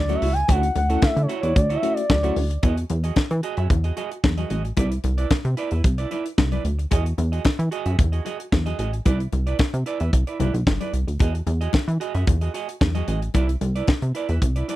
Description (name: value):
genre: early-eighties boogie funk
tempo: 112 BPM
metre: 4/4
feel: straight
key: E major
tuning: A4 = 440 Hz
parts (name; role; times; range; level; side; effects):
- gliding portamento lead; melody; 0.0-2.6 s; C#5 to G#5; -24 LUFS; right 1 dB; chorus, slapback echo
- plucky analog bass; bass; 0.0-14.6 s; G1 to E3; -22 LUFS; equal; none
- FM electric piano with auto-pan; accompaniment; 0.1-2.4 s; A3 to A4; -27 LUFS; left 5 dB; none
- clean electric guitar; riff; 0.1-14.8 s; E4 to E5; -30 LUFS; right 6 dB; wide subtle chorus
- tight funk drum kit; drums; 0.1-14.8 s; hi-hat, kick drum, snare drum; -20 LUFS; equal; none
- congas; percussion; 0.1-14.8 s; none; -33 LUFS; left 12 dB; none
room: little or no reverb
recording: dry, close 1970s-style studio recording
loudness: -20 LUFS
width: side -16 dB against mid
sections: 0.0-2.6 A section; 2.6-14.8 B section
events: soft synth lead solo 0.0-2.6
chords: 0.0 Dmaj9; 2.6 Emaj9; 4.8 Cmaj9; 6.9 Emaj9; 9.1 Cmaj9; 11.2 Emaj9; 13.3 Cmaj9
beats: | 0.49 1.02 1.56 2.09 | 2.63 3.17 3.70 4.24 | 4.77 5.31 5.84 6.38 | 6.92 7.45 7.99 8.52 | 9.06 9.59 10.13 10.66 | 11.20 11.74 12.27 12.81 | 13.34 13.88 14.41